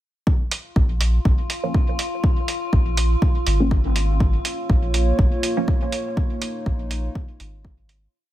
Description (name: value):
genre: dub techno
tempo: 122 BPM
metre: 4/4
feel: swing 56% on 16ths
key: Bb minor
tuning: A4 = 438 Hz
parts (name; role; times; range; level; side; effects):
- electronic kick drum; drums; 0.3-7.8 s; none; -19 LUFS; equal; studio reverb
- metallic inharmonic drone; texture; 1.0-8.1 s; F4; -30 LUFS; left 1 dB; chorus, built-in reverb, sidechain pumping
- electronic hi-hat; drums; 0.5-8.0 s; none; -27 LUFS; right 3 dB; overdrive, studio reverb
- soft dub sub bass; bass; 0.8-8.1 s; Ab1 to Bb1; -20 LUFS; equal; sidechain pumping
- filtered dub chord stab; stabs; 1.6-5.7 s; F3 to Db4; -27 LUFS; right 1 dB; phaser, dub echo
- dark analog pad; sustained chords; 4.8-8.1 s; Bb3 to Db5; -28 LUFS; right 2 dB; chorus, sidechain pumping
room: little or no reverb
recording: none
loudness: -18 LUFS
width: side -14 dB against mid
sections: 0.3-8.1 groove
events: fade-out 5.5-8.1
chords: 0.3 Bbm